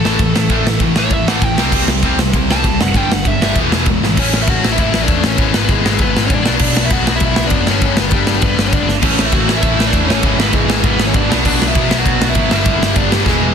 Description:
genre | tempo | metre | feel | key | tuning
punk rock | 198 BPM | 4/4 | straight | unclear | A4 = 440 Hz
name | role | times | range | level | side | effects
overdriven semi-hollow guitar | melody | 0.0-13.5 s | G3 to A5 | -21 LUFS | right 2 dB | none
distorted electric guitar | riff | 0.0-13.5 s | G2 to E4 | -19 LUFS | left 14 dB | distortion
heavy high-gain guitar | riff | 0.0-13.5 s | E2 to C4 | -22 LUFS | equal | distortion
tight distorted guitar | riff | 0.0-4.2, 9.0-13.5 s | E2 to C4 | -20 LUFS | right 16 dB | distortion
overdriven picked electric bass | bass | 0.0-13.5 s | E1 to F#2 | -20 LUFS | equal | none
big rock drum kit | drums | 0.1-13.3 s | crash cymbal, kick drum, ride cymbal, snare drum | -16 LUFS | equal | none
room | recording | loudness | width
little or no reverb | dense, heavily limited modern master, lossy compression artefacts | -12 LUFS | side -7 dB against mid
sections
0.0-4.2 A section; 4.2-13.5 B section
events
overdriven electric guitar solo 0.0-4.2; drum fill 4.0, 8.9, 13.3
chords
0.0 A5; 1.6 C5; 3.0 G5; 3.6 E; 4.2 A; 5.4 E/G#; 6.5 Bm; 7.7 G; 9.0 A; 10.2 E/G#; 11.3 Bm; 12.5 G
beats
0.20 | 0.51 0.81 1.12 1.43 | 1.73 2.04 2.34 2.65 | 2.95 3.26 3.56 3.87 | 4.17 4.48 4.78 5.09 | 5.39 5.70 6.00 6.30 | 6.61 6.91 7.21 7.52 | 7.82 8.13 8.43 8.73 | 9.04 9.34 9.64 9.94 | 10.25 10.55 10.85 11.15 | 11.46 11.76 12.06 12.36 | 12.66 12.97 13.27

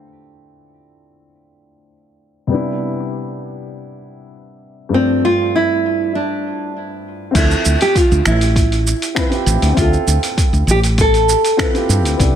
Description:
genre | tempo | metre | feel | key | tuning
sunset chillout | 99 BPM | 4/4 | straight | D dorian | A4 = 440 Hz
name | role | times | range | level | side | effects
dark baby grand piano | accompaniment | 0.0-12.4 s | G2 to E5 | -22 LUFS | moving between left 4 dB and right 3 dB | auto-pan, tape echo
nylon-string guitar | melody | 4.9-11.9 s | C4 to A4 | -17 LUFS | right 1 dB | ping-pong delay
woody fretless electric bass | bass | 7.3-12.4 s | A1 to G2 | -15 LUFS | equal | none
electronic kick drum | drums | 7.3-12.3 s | none | -17 LUFS | equal | none
dusty soul sampler-style drum kit | drums | 7.4-12.3 s | crash cymbal, finger snaps, hi-hat, shaker | -21 LUFS | right 1 dB | none
room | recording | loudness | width
light reverb | none | -13 LUFS | side -9 dB against mid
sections
0.0-7.3 A section; 7.3-12.4 B section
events
none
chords
0.0 Dm9; 2.5 Cmaj7; 4.9 G9sus4; 7.3 Dm9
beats
| 0.08 0.68 1.29 1.90 | 2.50 3.11 3.71 4.32 | 4.93 5.53 6.14 6.74 | 7.35 7.96 8.56 9.17 | 9.77 10.38 10.99 11.59 | 12.20

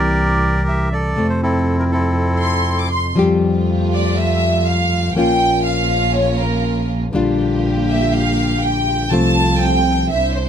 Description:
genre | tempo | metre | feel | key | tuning
tango | 121 BPM | 4/4 | rubato | F major | A4 = 440 Hz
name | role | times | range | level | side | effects
bandoneon | melody | 0.0-2.9 s | C4 to E5 | -19 LUFS | equal | plate reverb
nylon-string guitar | accompaniment | 0.0-10.5 s | C3 to G4 | -19 LUFS | left 3 dB | none
clear double bass | bass | 0.0-10.5 s | Bb1 to F2 | -20 LUFS | right 1 dB | none
rich studio violin section | second line | 2.4-10.5 s | Bb4 to D6 | -19 LUFS | right 1 dB | none
warm symphonic string section | stabs | 3.2-10.5 s | G3 to C5 | -26 LUFS | right 4 dB | none
room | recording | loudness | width
light reverb | close, detailed microphones, vinyl crackle | -14 LUFS | side -8 dB against mid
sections
0.0-3.2 A section; 3.2-10.5 B section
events
violin section solo 3.2-10.5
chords
0.0 C7; 1.2 Fmaj7; 3.2 Fadd9; 5.2 Bbm; 7.1 Gm7/Bb; 9.1 F/C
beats
0.18 0.68 | 1.18 1.67 2.17 2.67 | 3.17 3.67 4.17 4.67 | 5.16 5.66 6.15 6.64 | 7.14 7.63 8.13 8.62 | 9.12 9.62 10.12

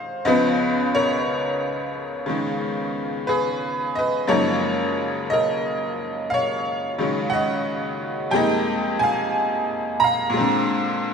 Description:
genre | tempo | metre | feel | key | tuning
solo jazz | 60 BPM | 4/4 | swing 67% on 8ths | unclear | A4 = 445 Hz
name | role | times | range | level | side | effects
tack piano | solo | 0.0-11.1 s | Db2 to Bb5 | -20 LUFS | equal | none
room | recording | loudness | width
wet concert hall reverb, RT60 2.1 s | none | -20 LUFS | side -6 dB against mid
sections
0.0-11.1 A section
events
none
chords
0.2 Db7; 4.3 Gbmaj13; 8.3 Fm11; 10.3 Bb9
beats
| 0.24 1.25 2.27 3.27 | 4.28 5.29 6.30 7.31 | 8.32 9.33 10.34

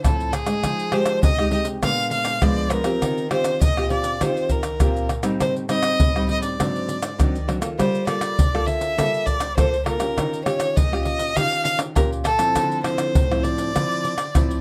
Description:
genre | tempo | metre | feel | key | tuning
samba and choro | 101 BPM | 4/4 | straight | unclear | A4 = 439 Hz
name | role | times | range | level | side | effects
clear violin | melody | 0.0-14.6 s | G#4 to F5 | -26 LUFS | equal | none
nylon-string guitar | accompaniment | 0.0-14.6 s | G#2 to A4 | -28 LUFS | equal | none
maracas, surdo, pandeiro and tamborim | percussion | 0.0-14.6 s | none | -24 LUFS | equal | none
room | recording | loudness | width
moderate studio reverb, RT60 0.5 s | none | -21 LUFS | mono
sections
0.0-14.6 A section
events
none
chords
0.0 Dm9 (rootless); 0.6 Fm9; 1.8 Bb7b9; 3.0 Eb69; 5.4 Am7b5; 6.6 G#7#11; 7.8 Gm9; 10.2 Eb9; 12.6 Dm9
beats
0.04 | 0.64 1.24 1.83 2.42 | 3.02 3.62 4.21 4.81 | 5.40 6.00 6.59 7.19 | 7.79 8.38 8.98 9.58 | 10.17 10.77 11.37 11.96 | 12.56 13.15 13.75 14.35

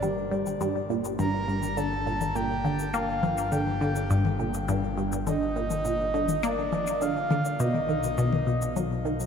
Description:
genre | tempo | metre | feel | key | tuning
ambient, sequencer-driven space music | 103 BPM | 4/4 | straight | unclear | A4 = 440 Hz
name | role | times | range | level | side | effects
breathy flute-like synth lead | melody | 0.0-9.3 s | D5 to Bb5 | -30 LUFS | equal | chorus, ping-pong delay
resonant blip pluck | riff | 0.0-9.2 s | G2 to Bb3 | -27 LUFS | equal | phaser, ping-pong delay
fat analog bass | bass | 0.0-9.3 s | G1 to B1 | -36 LUFS | equal | none
electronic toms and cabasa | percussion | 0.0-9.3 s | none | -35 LUFS | left 6 dB | overdrive, ping-pong delay
room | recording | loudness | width
wet cathedral reverb, RT60 7.1 s | in a vast, echoing space | -25 LUFS | side -7 dB against mid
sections
0.0-9.3 A section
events
none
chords
0.0 Gm; 7.6 B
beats
0.03 | 0.61 1.19 1.77 2.35 | 2.94 3.52 4.10 4.68 | 5.27 5.85 6.43 7.02 | 7.60 8.18 8.76

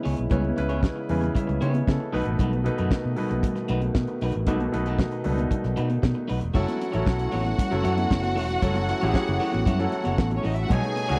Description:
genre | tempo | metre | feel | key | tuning
disco | 115 BPM | 4/4 | straight | F# dorian | A4 = 438 Hz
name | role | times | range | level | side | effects
electric guitar at the edge of break-up | accompaniment | 0.0-11.2 s | A3 to C#5 | -36 LUFS | equal | vibrato effect
warm grand piano | accompaniment | 0.0-11.2 s | B2 to G#5 | -32 LUFS | equal | none
mellow French horn section | sustained chords | 0.0-11.2 s | C#3 to F#4 | -34 LUFS | equal | none
fingered electric bass | bass | 0.1-11.2 s | E1 to C#3 | -29 LUFS | equal | tube saturation
warm soul drum kit | drums | 0.1-11.2 s | crash cymbal, hi-hat, kick drum, snare drum | -26 LUFS | equal | none
congas | percussion | 0.3-11.1 s | none | -35 LUFS | equal | none
clear studio string section | second line | 6.5-11.2 s | C#4 to G#5 | -32 LUFS | equal | none
room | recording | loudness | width
small room ambience | dry, close 1970s-style studio recording | -25 LUFS | mono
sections
0.0-6.5 A section; 6.5-11.2 B section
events
grand piano fill 0.8-2.4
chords
0.0 C#m7; 2.1 B7; 6.5 F#m7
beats
| 0.31 0.83 1.35 1.87 | 2.39 2.91 3.43 3.95 | 4.47 4.99 5.51 6.03 | 6.55 7.07 7.59 8.11 | 8.63 9.15 9.67 10.19 | 10.71

